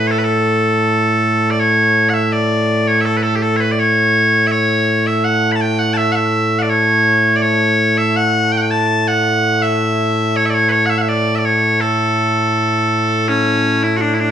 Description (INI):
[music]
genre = scottish traditional, Scottish pipe music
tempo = 82 BPM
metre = 2/4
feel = straight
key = A major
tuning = A4 = 440 Hz
[part]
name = loud bright bagpipes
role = solo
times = 0.0-14.3 s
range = A2 to B5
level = -13 LUFS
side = equal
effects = none
[sound]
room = wet large studio reverb, RT60 1.2 s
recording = band playing live in one room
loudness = -13 LUFS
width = side -9 dB against mid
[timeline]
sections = 0.0-1.6 A section; 1.6-13.3 B section; 13.3-14.3 B section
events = none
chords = none